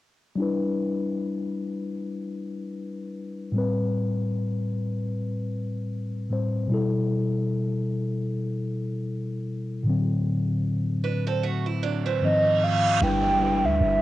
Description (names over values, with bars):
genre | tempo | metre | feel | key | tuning
R&B | 76 BPM | 4/4 | swing 58% on 16ths | G major | A4 = 438 Hz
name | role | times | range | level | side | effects
mellow tine electric piano | accompaniment | 0.4-14.0 s | Ab2 to C5 | -25 LUFS | left 2 dB | medium stereo tremolo, low-pass filter
picked acoustic archtop guitar | arpeggios | 11.0-12.4 s | E3 to B4 | -29 LUFS | right 8 dB | low-pass filter
reverse cymbal and downlifter | sound effects | 12.1-14.0 s | none | -31 LUFS | right 4 dB | none
hollow clarinet-like synth lead | melody | 12.2-14.0 s | Eb5 to G5 | -22 LUFS | right 2 dB | chorus
clean 808-style bass | bass | 13.0-14.0 s | G1 to D2 | -27 LUFS | right 2 dB | none
room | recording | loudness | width
light reverb, digital ambience | home recording on cassette | -24 LUFS | side -15 dB against mid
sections
0.4-13.0 A section; 13.0-14.0 B section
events
filter sweep 0.4-13.0; reverse cymbal 12.1-13.0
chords
0.4 G6; 3.5 Am9; 6.7 G6/B; 9.9 D7/A; 12.2 Ab6; 13.0 G6